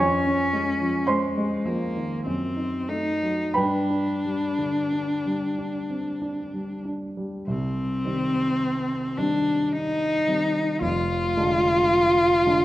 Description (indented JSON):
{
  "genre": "classical, romantic duo for cello and grand piano",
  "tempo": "43-56 BPM",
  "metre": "3/4",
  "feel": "rubato",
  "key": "C minor",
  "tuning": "A4 = 439 Hz",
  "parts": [
    { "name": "warm cello", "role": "melody", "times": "0.0-12.6 s", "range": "Ab3 to F4", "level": "-23 LUFS", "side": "left 1 dB", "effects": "none" },
    { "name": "dark concert grand piano", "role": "accompaniment", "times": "0.0-12.6 s", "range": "F1 to Db6", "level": "-27 LUFS", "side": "right 1 dB", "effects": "none" }
  ],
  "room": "wet recital hall reverb, RT60 1.3 s",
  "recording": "none",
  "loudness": "-22 LUFS",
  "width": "side -15 dB against mid",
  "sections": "0.0-7.5 A section; 7.5-12.6 B section",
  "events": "none",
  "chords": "0.0 Db/F; 2.3 F#dim7; 3.6 G; 7.5 Cm; 10.8 Ddim/F"
}